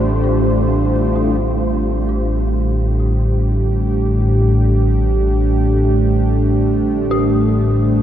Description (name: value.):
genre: dark ambient drone.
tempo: free time.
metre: none.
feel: none.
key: unclear.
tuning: A4 = 435 Hz.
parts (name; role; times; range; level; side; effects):
dark analog pad; sustained chords; 0.0-8.0 s; A3 to C5; -18 LUFS; right 1 dB; chorus.
dark detuned synth bell; arpeggios; 0.0-8.0 s; F4 to G4; -28 LUFS; equal; chorus, ping-pong delay.
analog drone; drone; 0.0-8.0 s; A1 to A2; -16 LUFS; equal; chorus.
wind-like tuned noise texture; texture; 0.0-1.4 s; F4; -31 LUFS; right 4 dB; built-in reverb.
room: moderate huge ambient reverb, RT60 7.7 s.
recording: cassette tape.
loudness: -14 LUFS.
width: side -10 dB against mid.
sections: 0.0-1.4 A section; 1.4-8.0 B section.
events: none.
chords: 0.0 Dm7/A.